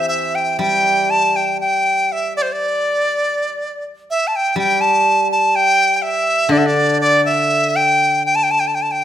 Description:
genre	chinese traditional, Chinese chamber ensemble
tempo	60 BPM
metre	2/4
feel	rubato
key	unclear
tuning	A4 = 439 Hz
part	bright dizi	melody	0.0-9.0 s	C5 to A5	-14 LUFS	equal	none
part	steel-string zither	accompaniment	0.0-9.0 s	D3 to C5	-22 LUFS	left 1 dB	none
room	moderate recital hall reverb, RT60 1.4 s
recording	minimal, uncompressed stereo recording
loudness	-14 LUFS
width	side -10 dB against mid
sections	0.0-8.5 A section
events	none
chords	none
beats	| 0.60 1.62 | 2.61 3.59 | 4.58 5.55 | 6.52 7.50 | 8.52

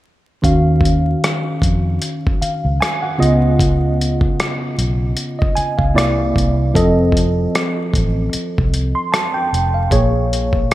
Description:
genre	R&B, neo-soul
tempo	76 BPM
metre	4/4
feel	swing 57% on 16ths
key	Eb minor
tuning	A4 = 439 Hz
part	tine electric piano	accompaniment	0.4-10.7 s	Bb2 to C6	-17 LUFS	right 1 dB	analog chorus
part	vintage muted fingered electric bass	bass	0.4-10.6 s	F1 to F2	-18 LUFS	equal	none
part	dusty soul sampler-style drum kit	drums	0.4-10.7 s	hi-hat, kick drum, rim click	-19 LUFS	equal	none
room	moderate plate reverb, RT60 3.0 s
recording	bright 1980s-style digital production, vinyl crackle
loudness	-14 LUFS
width	side -15 dB against mid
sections	0.4-10.7 A section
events	none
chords	0.4 Ebm9; 3.2 Db9; 6.0 C9; 6.8 F7; 9.9 Bbm7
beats	| 0.44 1.23 2.02 2.81 | 3.59 4.38 5.17 5.96 | 6.75 7.54 8.33 9.12 | 9.91 10.70

